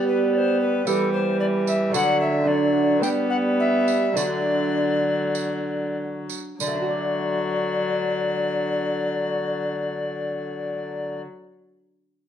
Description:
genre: classical, renaissance-style consort dance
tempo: 93-112 BPM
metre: 4/4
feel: straight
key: D major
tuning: A4 = 440 Hz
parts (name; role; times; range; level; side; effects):
- bright tenor recorder; melody; 0.0-11.2 s; A4 to G5; -26 LUFS; left 3 dB; none
- lute; accompaniment; 0.0-11.5 s; D3 to D5; -26 LUFS; right 3 dB; none
- warm viola; accompaniment; 0.0-11.2 s; F#3 to B3; -27 LUFS; left 1 dB; none
- warm bassoon; bass; 0.0-11.2 s; D3 to G3; -28 LUFS; right 2 dB; none
- tambourine; percussion; 0.9-6.9 s; none; -32 LUFS; right 10 dB; none
room: moderate stone room reverb, RT60 1.0 s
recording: dark, warm production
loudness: -21 LUFS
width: side -9 dB against mid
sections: 0.0-6.6 A section; 6.6-11.7 B section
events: slowing down 0.9-6.6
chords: 0.0 G; 0.9 Em; 1.9 D; 3.0 G; 4.2 D

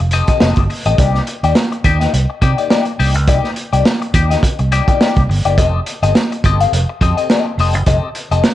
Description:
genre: funk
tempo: 105 BPM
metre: 4/4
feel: swing 56% on 16ths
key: C dorian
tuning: A4 = 440 Hz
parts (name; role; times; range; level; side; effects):
- clean electric guitar; accompaniment; 0.0-8.5 s; Bb3 to F5; -18 LUFS; left 7 dB; wah, spring reverb, plate reverb
- fingered electric bass; bass; 0.0-8.4 s; F1 to C3; -15 LUFS; right 1 dB; none
- crunchy breakbeat drum kit; drums; 0.1-8.5 s; hi-hat, kick drum, snare drum; -15 LUFS; right 1 dB; none
room: moderate club reverb, RT60 0.8 s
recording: nothing above 10.4 kHz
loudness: -12 LUFS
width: side -13 dB against mid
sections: 0.0-8.5 A section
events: none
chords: 0.0 F9; 1.0 Cm9; 5.6 F9

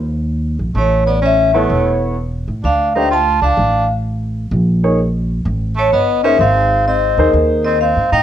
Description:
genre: jazz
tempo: 128 BPM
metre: 4/4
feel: swing 66% on 8ths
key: unclear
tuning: A4 = 436 Hz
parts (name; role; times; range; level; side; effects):
- upright bass; bass; 0.0-8.2 s; E1 to A2; -17 LUFS; equal; none
- vibraphone with medium mallets; melody; 0.8-8.2 s; C#5 to A5; -15 LUFS; left 1 dB; plate reverb
- bright tenor saxophone; second line; 0.8-8.2 s; A3 to F4; -19 LUFS; right 3 dB; none
- warm grand piano; accompaniment; 1.5-7.8 s; A3 to C#5; -17 LUFS; right 1 dB; none
room: moderate studio reverb, RT60 0.8 s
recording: worn, warbling old tape, cassette tape, warbly pitch drift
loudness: -13 LUFS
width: side -10 dB against mid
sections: 0.0-8.2 A section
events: none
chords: 0.0 Cm7 (rootless); 0.8 A; 2.6 Dm; 4.5 Bbm7; 5.5 A7#11; 6.4 Ab

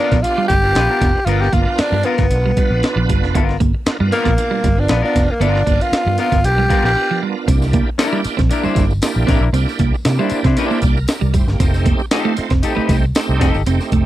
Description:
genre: funk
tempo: 116 BPM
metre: 4/4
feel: straight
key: unclear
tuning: A4 = 441 Hz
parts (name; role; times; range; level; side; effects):
- growling tenor saxophone; melody; 0.0-7.2 s; A#3 to G4; -18 LUFS; equal; none
- clean electric guitar; accompaniment; 0.0-13.6 s; B3 to C5; -20 LUFS; left 8 dB; none
- bright tonewheel organ; stabs; 0.0-14.1 s; B2 to E5; -23 LUFS; right 5 dB; chorus vibrato, slow rotary speaker
- clean electric guitar; riff; 0.1-14.0 s; F3 to C4; -22 LUFS; right 7 dB; spring reverb
- vintage muted fingered electric bass; bass; 0.1-14.0 s; F1 to C3; -18 LUFS; equal; none
- breakbeat sampler-style drum kit; drums; 0.1-14.0 s; hi-hat, kick drum, snare drum; -18 LUFS; equal; none
- tambourine; percussion; 7.5-13.9 s; none; -36 LUFS; left 6 dB; none
room: little or no reverb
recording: dry, close 1970s-style studio recording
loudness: -14 LUFS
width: side -14 dB against mid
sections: 0.0-7.5 A section; 7.5-14.1 B section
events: break 7.0-7.5; tonewheel organ fill 10.6-11.6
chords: 0.0 G7#9; 7.5 C9; 11.6 F9

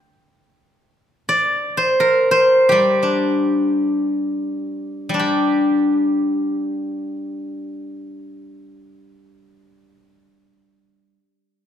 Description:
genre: chinese traditional, Chinese solo plucked strings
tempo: free time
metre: none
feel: none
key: G yu mode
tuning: A4 = 439 Hz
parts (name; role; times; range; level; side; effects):
- steel-string zither; solo; 0.0-11.2 s; G3 to G5; -17 LUFS; equal; none
room: light reverb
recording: minimal, uncompressed stereo recording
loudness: -16 LUFS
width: side -9 dB against mid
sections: 0.0-5.2 A section; 5.2-9.5 B section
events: slowing down 0.0-5.2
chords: none

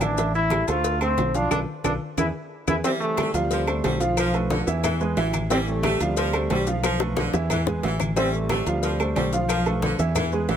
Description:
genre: latin, salsa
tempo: 180 BPM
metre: 4/4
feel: straight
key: A minor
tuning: A4 = 440 Hz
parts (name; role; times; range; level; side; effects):
- clear trombone; melody; 0.0-2.8 s; C4 to F4; -26 LUFS; equal; none
- warm baby grand piano; accompaniment; 0.0-10.6 s; E3 to F5; -27 LUFS; right 3 dB; none
- fingered electric bass; bass; 0.0-10.6 s; A1 to E2; -27 LUFS; equal; none
- agogo bells and timbales; percussion; 0.0-10.6 s; none; -34 LUFS; right 7 dB; none
- claves; percussion; 0.0-10.3 s; none; -36 LUFS; left 10 dB; none
- congas; percussion; 0.0-10.6 s; none; -32 LUFS; left 3 dB; none
- cowbell and bongos; percussion; 0.0-10.6 s; none; -32 LUFS; left 9 dB; none
- maracas; percussion; 0.0-10.6 s; none; -37 LUFS; left 10 dB; none
- warm trombone section; melody; 2.8-10.0 s; A2 to C4; -27 LUFS; right 1 dB; none
- clear saxophone section; second line; 2.8-10.6 s; D3 to A3; -29 LUFS; left 1 dB; none
room: light reverb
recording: none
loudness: -21 LUFS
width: side -9 dB against mid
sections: 0.0-2.8 A section; 2.8-10.6 B section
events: band accent 1.5-2.8; drum fill 1.8-2.8, 6.8-8.2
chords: 0.2 Am7; 0.8 Dm7; 1.5 Bm7b5; 2.2 E; 2.8 Am7; 3.5 Dm7; 4.2 Bm7b5; 4.8 E; 5.5 Am7; 6.2 Dm7; 6.8 Bm7b5; 7.5 E; 8.2 Am7; 8.8 Dm7; 9.5 Bm7b5

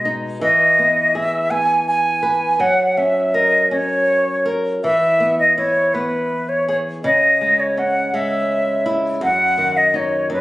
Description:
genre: children's music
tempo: 55 BPM (dotted quarters)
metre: 6/8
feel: rubato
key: unclear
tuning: A4 = 440 Hz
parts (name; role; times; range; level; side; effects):
- silver concert flute; melody; 0.0-10.4 s; B4 to G#5; -15 LUFS; equal; none
- flamenco guitar; accompaniment; 0.0-10.4 s; F#2 to B4; -21 LUFS; equal; none
room: moderate spring reverb, RT60 1.3 s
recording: recorded on a phone in the room, studio reverb, compression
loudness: -14 LUFS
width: side -17 dB against mid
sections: 0.0-10.4 A section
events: none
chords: 0.4 E; 2.6 F#; 4.8 E; 7.0 C#m; 9.2 D#m7/F#

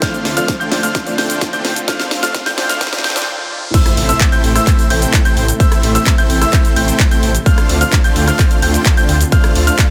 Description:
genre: EDM, festival progressive house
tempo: 129 BPM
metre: 4/4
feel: straight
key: A minor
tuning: A4 = 440 Hz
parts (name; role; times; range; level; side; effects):
- warm concert grand piano; accompaniment; 0.0-3.3 s; F3 to F4; -28 LUFS; equal; sidechain pumping, digital delay
- lush unison pad; sustained chords; 0.0-9.9 s; C3 to F4; -28 LUFS; equal; none
- dark baby grand piano; arpeggios; 0.0-9.9 s; E6 to G6; -23 LUFS; equal; sidechain pumping, low-pass filter, digital delay
- dense compressed supersaw; riff; 0.0-9.9 s; A3 to G5; -22 LUFS; equal; sidechain pumping, digital delay
- electronic kick drum; drums; 0.0-9.9 s; none; -15 LUFS; equal; none
- house drum kit; drums; 0.0-9.9 s; crash cymbal, handclaps, hi-hat, rim click, shaker, snare drum; -22 LUFS; equal; soft clipping on snare
- riser, noise sweep and impact; sound effects; 0.6-5.6 s; none; -30 LUFS; equal; none
- detuned saw bass; bass; 0.3-9.7 s; A1 to D2; -19 LUFS; equal; sidechain pumping
room: light reverb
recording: dense, heavily limited modern master, high-pass filter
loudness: -14 LUFS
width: mono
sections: 0.0-3.7 A section; 3.7-9.9 B section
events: build-up 0.0-3.7; drum fill 0.0-3.3; filter sweep 0.0-3.7; break 3.3-3.7; drop 3.7-9.9; impact 3.7-5.6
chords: 0.0 Dm7; 3.7 Am; 7.5 Dm7

